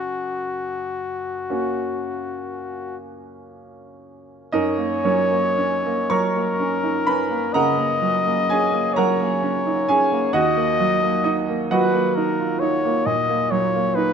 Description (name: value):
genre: classical, romantic duo for trumpet and grand piano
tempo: 37-45 BPM (dotted quarters)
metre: 12/8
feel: rubato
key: F# major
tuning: A4 = 440 Hz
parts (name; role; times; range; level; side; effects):
- warm trumpet; melody; 0.0-14.1 s; F#4 to D#5; -22 LUFS; left 4 dB; none
- bright baby grand piano; accompaniment; 0.0-14.1 s; D#2 to C#6; -21 LUFS; right 3 dB; none
room: moderate recital hall reverb, RT60 1.5 s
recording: close, detailed microphones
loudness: -19 LUFS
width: side -7 dB against mid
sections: 0.0-4.5 A section; 4.5-14.1 A section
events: none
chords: 0.0 F#; 10.3 D#m